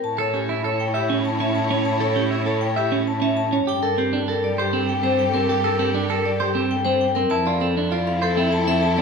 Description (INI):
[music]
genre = classical, minimalist pattern music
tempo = 198 BPM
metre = 6/4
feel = straight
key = unclear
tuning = A4 = 440 Hz
[part]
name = vibraphone with hard mallets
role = melody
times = 0.0-9.0 s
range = G4 to A5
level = -23 LUFS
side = left 5 dB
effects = none
[part]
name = rich symphonic violin section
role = sustained chords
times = 0.0-9.0 s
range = E4 to C#5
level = -29 LUFS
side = left 3 dB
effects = none
[part]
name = rich cello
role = bass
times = 0.0-9.0 s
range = F2 to A2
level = -26 LUFS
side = right 3 dB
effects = none
[part]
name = clean electric guitar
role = arpeggios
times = 0.2-9.0 s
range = C4 to E5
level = -24 LUFS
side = right 5 dB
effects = none
[sound]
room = wet recital hall reverb, RT60 1.5 s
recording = minimal, uncompressed stereo recording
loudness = -19 LUFS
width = side -5 dB against mid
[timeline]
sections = 0.0-9.0 A section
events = none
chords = 0.0 A; 3.7 Gmadd9; 7.3 Fmaj7